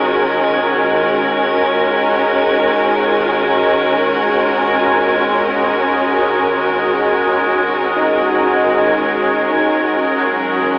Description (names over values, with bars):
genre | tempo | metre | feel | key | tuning
ambient | free time | none | none | unclear | A4 = 439 Hz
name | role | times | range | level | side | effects
rich studio string section | sustained chords | 0.0-10.8 s | C#3 to A#4 | -17 LUFS | equal | none
round analog bass | bass | 0.0-10.8 s | C#2 to E2 | -47 LUFS | equal | none
overtone-sweeping drone | drone | 0.0-10.8 s | G#3 to G#4 | -22 LUFS | equal | chorus, built-in reverb
drifting glass-harmonics texture | texture | 0.0-10.8 s | G#6 | -27 LUFS | equal | chorus, built-in reverb
felt-muted upright piano | arpeggios | 8.0-10.8 s | D#4 to F#4 | -22 LUFS | equal | tape echo
room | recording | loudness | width
wet cathedral reverb, RT60 6.7 s | in a vast, echoing space, telephone sound | -15 LUFS | mono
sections
0.0-10.8 A section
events
fade-in on felt piano 0.0-10.8; fade-out on synth texture 0.0-10.8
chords
0.0 D#7sus4; 1.9 E6; 10.0 C#5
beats
free time